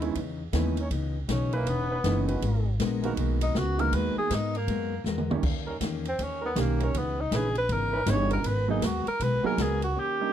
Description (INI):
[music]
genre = jazz, big band swing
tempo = 159 BPM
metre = 4/4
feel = swing 64% on 8ths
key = G# minor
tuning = A4 = 440 Hz
[part]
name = warm tenor saxophone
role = melody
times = 0.0-10.3 s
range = A#3 to C#5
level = -29 LUFS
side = equal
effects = none
[part]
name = clear concert grand piano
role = accompaniment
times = 0.0-10.3 s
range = D#3 to A#4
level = -32 LUFS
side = right 9 dB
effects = none
[part]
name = picked steel-string acoustic guitar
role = accompaniment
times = 0.0-10.2 s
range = C#3 to A#4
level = -34 LUFS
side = left 8 dB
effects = none
[part]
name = upright bass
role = bass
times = 0.0-9.9 s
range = E1 to G#2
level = -29 LUFS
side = equal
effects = none
[part]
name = swinging big-band drum kit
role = drums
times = 0.0-9.9 s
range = crash cymbal, hi-hat, kick drum, ride cymbal, snare drum, toms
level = -35 LUFS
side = equal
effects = none
[part]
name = warm trombone section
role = sustained chords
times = 0.8-3.1, 5.7-9.9 s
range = E3 to C#5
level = -36 LUFS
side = right 2 dB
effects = none
[sound]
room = little or no reverb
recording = dry, close 1970s-style studio recording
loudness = -25 LUFS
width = side -10 dB against mid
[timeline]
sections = 0.0-10.3 A section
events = tenor saxophone solo 0.0-10.3; drum fill 5.1-5.4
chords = 0.0 C#m9; 2.4 G#m9; 5.4 D#7; 6.9 C#m9; 8.4 G#m9